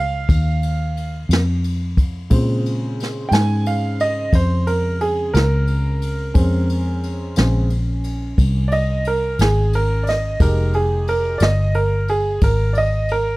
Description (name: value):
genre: slow blues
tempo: 59 BPM (dotted quarters)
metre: 12/8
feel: straight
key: unclear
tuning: A4 = 440 Hz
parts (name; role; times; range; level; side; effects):
- clear upright piano; accompaniment; 0.0-13.4 s; Db3 to Ab5; -22 LUFS; right 2 dB; none
- vintage muted fingered electric bass; bass; 0.0-13.4 s; F1 to Bb2; -19 LUFS; equal; none
- jazz brush drum kit; drums; 0.3-13.2 s; kick drum, ride cymbal, snare drum; -20 LUFS; equal; none
room: studio ambience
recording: dry, close 1970s-style studio recording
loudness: -16 LUFS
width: side -21 dB against mid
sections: 0.0-13.4 A section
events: upright piano solo 0.0-13.4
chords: 0.0 F7(no3); 2.3 Bbm9; 10.4 Fm9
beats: 0.28 1.29 | 2.31 3.32 4.33 5.34 | 6.36 7.37 8.38 9.39 | 10.40 11.41 12.43